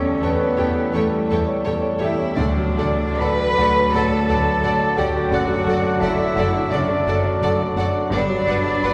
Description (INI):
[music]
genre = classical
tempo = 85 BPM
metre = 4/4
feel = rubato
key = D major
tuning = A4 = 440 Hz
[part]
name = clear grand piano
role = melody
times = 0.0-8.9 s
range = D2 to B5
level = -26 LUFS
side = equal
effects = none
[part]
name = mellow clarinet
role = second line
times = 0.0-8.9 s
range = A4 to B5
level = -32 LUFS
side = equal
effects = none
[part]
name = mellow cor anglais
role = second line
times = 0.0-8.9 s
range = A4 to D5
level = -34 LUFS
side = equal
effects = none
[part]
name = mellow hollow large flute ensemble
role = second line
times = 0.0-8.9 s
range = A4 to B5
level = -33 LUFS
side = equal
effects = none
[part]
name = mellow bassoon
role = accompaniment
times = 0.0-8.9 s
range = F#3 to G3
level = -34 LUFS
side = equal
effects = none
[part]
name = dark trombone section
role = sustained chords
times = 0.0-8.4 s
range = D3 to G3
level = -32 LUFS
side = equal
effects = none
[part]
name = mellow French horn section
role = sustained chords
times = 0.0-8.4 s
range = A3 to A4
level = -32 LUFS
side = equal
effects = none
[part]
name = dark trumpet section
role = stabs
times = 0.0-8.9 s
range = A4 to B5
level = -29 LUFS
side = equal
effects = none
[part]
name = clear studio cello section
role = bass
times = 0.0-8.9 s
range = A3 to B4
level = -28 LUFS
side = equal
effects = none
[part]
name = clear studio violin section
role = melody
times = 0.2-8.9 s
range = F#5 to G5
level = -39 LUFS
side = equal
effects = none
[part]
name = rich chamber violin section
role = second line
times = 0.2-8.9 s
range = C#5 to D5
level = -35 LUFS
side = equal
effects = none
[part]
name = rich chamber viola section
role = accompaniment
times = 0.2-8.9 s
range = A4 to B4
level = -33 LUFS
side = equal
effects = none
[part]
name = rich chamber double bass section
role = bass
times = 0.2-8.9 s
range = F#1 to E2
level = -29 LUFS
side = equal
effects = none
[sound]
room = wet cathedral reverb, RT60 4.2 s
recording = recorded in a church or concert hall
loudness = -20 LUFS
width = mono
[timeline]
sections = 0.0-8.9 A section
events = none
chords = 0.0 A7/E; 2.4 D; 5.3 D/F#; 8.1 Gmaj7